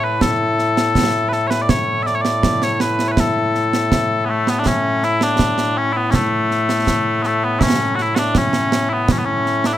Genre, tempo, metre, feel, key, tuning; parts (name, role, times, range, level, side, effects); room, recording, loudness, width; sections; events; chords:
scottish traditional, Scottish pipe music; 81 BPM; 2/4; straight; A major; A4 = 440 Hz
mellow small bagpipes; melody; 0.0-9.8 s; A2 to E5; -16 LUFS; left 1 dB
concert snare drum and concert bass drum; drums; 0.2-9.8 s; -20 LUFS; right 2 dB
light reverb; close, detailed microphones; -15 LUFS; side -12 dB against mid
0.0-4.7 A section; 4.7-9.8 A section